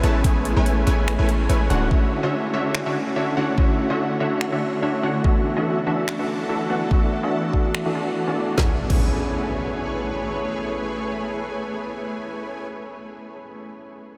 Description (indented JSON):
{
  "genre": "future bass",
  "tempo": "144 BPM",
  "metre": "4/4",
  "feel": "swing 55% on 16ths, half-time",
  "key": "A major",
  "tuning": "A4 = 440 Hz",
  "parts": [
    { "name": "tine electric piano", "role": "accompaniment", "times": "0.0-14.2 s", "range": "A3 to G#4", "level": "-30 LUFS", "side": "equal", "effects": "sidechain pumping, analog delay" },
    { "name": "shimmering ambient pad", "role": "sustained chords", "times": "0.0-12.7 s", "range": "D3 to C#5", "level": "-32 LUFS", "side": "equal", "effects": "chorus, built-in reverb, sidechain pumping" },
    { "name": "supersaw stab", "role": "riff", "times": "0.0-12.7 s", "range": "D3 to A5", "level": "-28 LUFS", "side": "equal", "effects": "sidechain pumping, low-pass filter, analog delay" },
    { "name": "warm 808-style bass", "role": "bass", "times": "0.0-1.9 s", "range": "D1 to A1", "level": "-22 LUFS", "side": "equal", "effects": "sidechain pumping" },
    { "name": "trap drum kit", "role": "drums", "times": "0.0-9.0 s", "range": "crash cymbal, finger snaps, hi-hat, snare drum", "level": "-36 LUFS", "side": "equal", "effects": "none" },
    { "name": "electronic kick drum", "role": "drums", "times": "0.2-9.0 s", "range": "none", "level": "-22 LUFS", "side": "equal", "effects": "none" },
    { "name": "impact", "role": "sound effects", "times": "8.6-13.4 s", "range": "none", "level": "-33 LUFS", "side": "equal", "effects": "none" }
  ],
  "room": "wet huge ambient reverb, RT60 7.7 s",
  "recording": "dreamy mix soaked in reverb",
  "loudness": "-22 LUFS",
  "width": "mono",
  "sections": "0.0-8.6 A section; 8.6-11.9 B section",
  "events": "filter sweep on supersaw synth 0.0-8.6",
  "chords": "0.0 Amaj9; 1.7 Dmaj7; 5.2 E9sus4; 8.6 Amaj9"
}